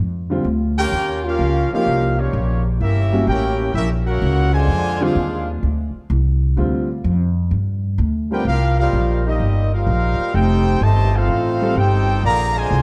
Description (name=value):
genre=jazz, big band swing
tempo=127 BPM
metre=4/4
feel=swing 68% on 8ths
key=unclear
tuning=A4 = 439 Hz
part: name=upright bass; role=bass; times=0.0-12.8 s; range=F1 to G2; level=-20 LUFS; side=equal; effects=none
part: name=warm baby grand piano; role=accompaniment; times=0.3-8.5, 11.6-11.8 s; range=D3 to Bb4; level=-26 LUFS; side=equal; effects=none
part: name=clear trumpet section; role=melody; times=0.8-5.5, 8.3-12.8 s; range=Bb3 to Bb5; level=-25 LUFS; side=equal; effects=none
part: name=clear trombone section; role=second line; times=0.8-5.5, 8.3-12.8 s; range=C3 to G4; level=-26 LUFS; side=equal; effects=none
room=light reverb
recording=dark, warm production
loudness=-18 LUFS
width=mono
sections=0.0-12.8 A section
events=none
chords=0.0 Bbadd9; 0.9 Eb9; 2.8 Edim7; 4.7 Fm13; 6.6 Dmadd11; 7.5 G7; 8.5 Cm7; 10.3 F9; 12.2 Bb9